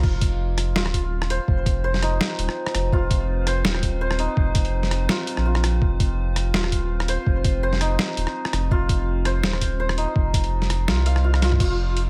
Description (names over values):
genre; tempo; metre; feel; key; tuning
half-time drum and bass; 166 BPM; 4/4; swing 54% on 16ths, half-time; unclear; A4 = 441 Hz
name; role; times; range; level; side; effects
santur; arpeggios; 0.0-12.1 s; Eb4 to F5; -30 LUFS; equal; digital delay
saturated sub bass; bass; 0.0-12.1 s; Eb1 to C2; -25 LUFS; equal; none
boom bap sampler-style drum kit; drums; 0.0-12.0 s; crash cymbal, hi-hat, rim click, snare drum, toms; -28 LUFS; equal; studio reverb
electronic kick drum; drums; 0.0-11.7 s; none; -24 LUFS; equal; studio reverb
metallic inharmonic drone; texture; 1.2-11.6 s; C4; -39 LUFS; equal; chorus, built-in reverb, phaser
room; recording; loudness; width
digital ambience; none; -22 LUFS; mono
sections
0.0-11.6 A section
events
drop 0.0-11.6; kick drops out 10.9-11.6; drum fill 11.4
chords
0.0 F5